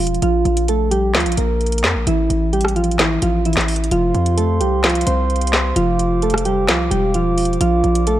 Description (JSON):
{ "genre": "hip hop, trap", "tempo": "130 BPM", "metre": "4/4", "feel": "half-time", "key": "unclear", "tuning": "A4 = 437 Hz", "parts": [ { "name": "soft electric-piano-like synth keys", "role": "melody", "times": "0.0-8.2 s", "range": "E3 to C5", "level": "-18 LUFS", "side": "right 1 dB", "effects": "chorus, low-pass filter" }, { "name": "distorted 808-style bass", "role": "bass", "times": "0.0-8.2 s", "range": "E1 to F2", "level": "-20 LUFS", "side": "equal", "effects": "distortion" }, { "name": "trap drum kit", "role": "drums", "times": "0.1-8.2 s", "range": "handclaps, hi-hat, rim click, snare drum", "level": "-20 LUFS", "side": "equal", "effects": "none" }, { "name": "glass harmonica", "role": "sustained chords", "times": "3.9-8.2 s", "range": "G4 to D6", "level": "-26 LUFS", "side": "right 2 dB", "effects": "none" } ], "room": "digital ambience", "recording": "dark, warm production", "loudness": "-15 LUFS", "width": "side -13 dB against mid", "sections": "0.0-8.2 A section", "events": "none", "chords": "0.2 Bb5; 2.1 A5; 3.9 Fsus2; 7.6 Bb" }